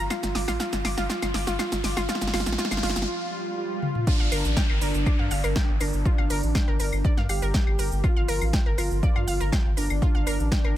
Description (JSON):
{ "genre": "melodic techno", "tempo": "121 BPM", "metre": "4/4", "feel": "straight", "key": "G minor", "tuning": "A4 = 441 Hz", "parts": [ { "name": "wide unison lead", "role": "melody", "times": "0.0-10.8 s", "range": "D4 to G4", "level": "-31 LUFS", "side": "right 1 dB", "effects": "sidechain pumping, tape echo" }, { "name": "wide unison pluck", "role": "arpeggios", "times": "0.0-10.8 s", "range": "F4 to D6", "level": "-33 LUFS", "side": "equal", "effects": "sidechain pumping, ping-pong delay" }, { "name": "round analog bass", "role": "bass", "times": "0.0-10.7 s", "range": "G1 to G2", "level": "-28 LUFS", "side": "equal", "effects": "sidechain pumping" }, { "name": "riser, swell and downlifter", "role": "sound effects", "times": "0.0-8.0 s", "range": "none", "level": "-35 LUFS", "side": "equal", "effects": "none" }, { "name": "deep house drum kit", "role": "drums", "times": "0.1-10.7 s", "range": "claves, crash cymbal, hi-hat, shaker, snare drum, toms", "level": "-30 LUFS", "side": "left 1 dB", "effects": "none" }, { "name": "electronic kick drum", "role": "drums", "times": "4.1-10.6 s", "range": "none", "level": "-23 LUFS", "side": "equal", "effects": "none" } ], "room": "digital ambience", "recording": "none", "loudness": "-22 LUFS", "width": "side -13 dB against mid", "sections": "0.0-4.1 A section; 4.1-10.8 B section", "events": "build-up 0.0-4.1; drum fill 0.0-3.1, 3.8; riser 0.0-3.1; filter sweep on synth arpeggio sound 0.0-4.1; filter sweep on analog synth lead 0.0-4.1; break 3.1-4.1; swell 3.1-4.1; drop 4.1-10.8", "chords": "0.0 G7(no3)" }